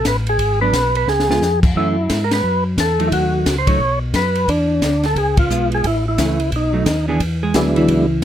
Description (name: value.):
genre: soul jazz organ trio.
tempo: 176 BPM.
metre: 4/4.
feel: swing 63% on 8ths.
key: E mixolydian.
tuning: A4 = 438 Hz.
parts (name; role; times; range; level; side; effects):
percussive tonewheel organ; melody; 0.0-8.1 s; F#3 to C#5; -18 LUFS; equal; slow rotary speaker.
tonewheel organ; bass; 0.0-8.2 s; G#1 to G#2; -20 LUFS; equal; slow rotary speaker.
compact cocktail drum kit; drums; 0.0-8.0 s; crash cymbal, hi-hat, kick drum, ride cymbal, snare drum; -21 LUFS; left 1 dB; none.
hollow-body jazz guitar; accompaniment; 0.6-8.2 s; E3 to G#4; -20 LUFS; right 3 dB; none.
room: little or no reverb.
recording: close, detailed microphones.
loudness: -15 LUFS.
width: side -10 dB against mid.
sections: 0.0-7.2 A section; 7.2-8.2 B section.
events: drum fill 1.1-1.4; band accent 2.3, 5.3; hollow-body jazz guitar solo 7.2-8.2.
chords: 0.4 G#m7b5; 1.1 C#7; 1.8 F#m7; 3.1 B7; 4.5 Dsus2; 5.2 C#7; 5.8 A; 6.5 B7; 7.2 E7.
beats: 0.05 | 0.39 0.73 1.07 1.41 | 1.75 2.10 2.44 2.78 | 3.12 3.46 3.80 4.14 | 4.48 4.82 5.16 5.50 | 5.84 6.18 6.52 6.86 | 7.20 7.54 7.88 8.23.